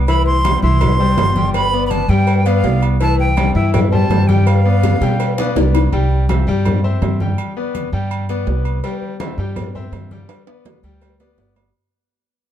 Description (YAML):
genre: latin, salsa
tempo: 165 BPM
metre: 4/4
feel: straight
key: C major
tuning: A4 = 438 Hz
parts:
  - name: upright bass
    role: bass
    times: 0.0-11.7 s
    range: G1 to B2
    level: -16 LUFS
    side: right 1 dB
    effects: none
  - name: breathy bright silver concert flute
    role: melody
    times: 0.1-5.6 s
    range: F5 to C6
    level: -20 LUFS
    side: right 1 dB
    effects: none
  - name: bright grand piano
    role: accompaniment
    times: 0.1-11.7 s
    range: E3 to G5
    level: -21 LUFS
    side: left 4 dB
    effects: none
  - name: agogo bells and timbales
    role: percussion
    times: 0.1-11.7 s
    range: none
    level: -28 LUFS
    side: right 10 dB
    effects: none
  - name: congas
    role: percussion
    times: 0.1-11.7 s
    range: none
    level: -24 LUFS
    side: left 1 dB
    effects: none
  - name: cowbell and bongos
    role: percussion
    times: 0.1-5.8, 8.8-11.6 s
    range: none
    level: -24 LUFS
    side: left 4 dB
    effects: none
room: little or no reverb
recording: dark, warm production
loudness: -13 LUFS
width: side -10 dB against mid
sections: 0.0-5.9 A section; 5.9-11.7 B section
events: drum fill 4.8-5.9, 10.3-11.7; fade-out 5.9-11.7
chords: 0.1 C; 1.5 G7; 3.0 C; 4.5 G7; 5.9 C; 7.4 G; 8.8 C; 10.3 G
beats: | 0.08 0.45 0.81 1.18 | 1.54 1.91 2.27 2.64 | 3.01 3.37 3.74 4.10 | 4.47 4.83 5.20 5.56 | 5.93 6.29 6.66 7.02 | 7.38 7.75 8.11 8.48 | 8.84 9.20 9.57 9.93 | 10.29 10.65 11.02 11.38